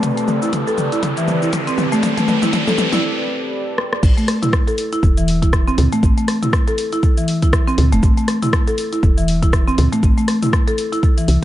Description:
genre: afro house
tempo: 120 BPM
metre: 4/4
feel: swing 58% on 16ths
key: A minor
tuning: A4 = 439 Hz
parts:
  - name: warm analog pad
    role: sustained chords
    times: 0.0-4.0 s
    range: C4 to D5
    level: -24 LUFS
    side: right 1 dB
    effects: chorus, sidechain pumping
  - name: deep house drum kit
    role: drums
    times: 0.0-11.4 s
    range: cabasa, crash cymbal, hi-hat, rim click, toms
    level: -22 LUFS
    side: left 1 dB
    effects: none
  - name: electronic kick drum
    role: drums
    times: 0.0-11.1 s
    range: none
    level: -15 LUFS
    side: equal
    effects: high-pass filter on kick, high-pass filter on room
  - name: riser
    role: sound effects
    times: 0.0-3.0 s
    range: none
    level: -24 LUFS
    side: equal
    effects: none
  - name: buzzing marimba with medium mallets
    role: arpeggios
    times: 0.2-11.3 s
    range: E3 to A4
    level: -19 LUFS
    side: equal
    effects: sidechain pumping, tape echo
  - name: woody FM bass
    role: bass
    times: 4.0-11.4 s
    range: E1 to D2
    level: -17 LUFS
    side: equal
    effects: sidechain pumping
room: light reverb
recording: nothing above 10.5 kHz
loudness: -14 LUFS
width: side -13 dB against mid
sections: 0.0-4.0 A section; 4.0-11.4 B section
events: build-up 0.0-4.0; drum fill 0.0-3.0, 3.8; riser 0.0-3.0; break 3.0-4.0; drop 4.0-11.4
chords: 0.0 Am11; 4.0 A5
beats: | 0.03 0.53 1.03 1.53 | 2.03 2.53 3.03 3.53 | 4.03 4.53 5.03 5.53 | 6.03 6.53 7.03 7.53 | 8.03 8.53 9.03 9.53 | 10.03 10.53 11.03

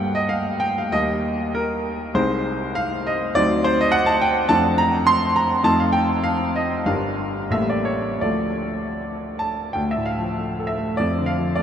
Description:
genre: classical, romantic character piece for solo piano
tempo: 75-108 BPM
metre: 2/4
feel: rubato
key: D minor from 4.5 s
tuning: A4 = 440 Hz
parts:
  - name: clear grand piano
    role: solo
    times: 0.0-11.6 s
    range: G1 to C6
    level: -19 LUFS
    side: equal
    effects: none
room: wet huge ambient reverb, RT60 8.2 s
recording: in a vast, echoing space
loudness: -19 LUFS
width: side -8 dB against mid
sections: 0.0-9.8 A section; 9.8-11.6 B section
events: none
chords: 0.0 Gm; 0.9 Eb; 2.2 Ab/C; 3.4 D7b9; 4.5 Dm/F; 5.7 F7; 6.9 Gm7; 7.5 A7b9; 8.2 Dm; 11.0 Dm/F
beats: 0.30 | 0.94 1.55 | 2.16 2.77 | 3.38 3.96 | 4.53 5.09 | 5.67 6.26 | 6.88 7.52 | 8.23 9.02 | 9.76 10.39 | 11.00 11.59

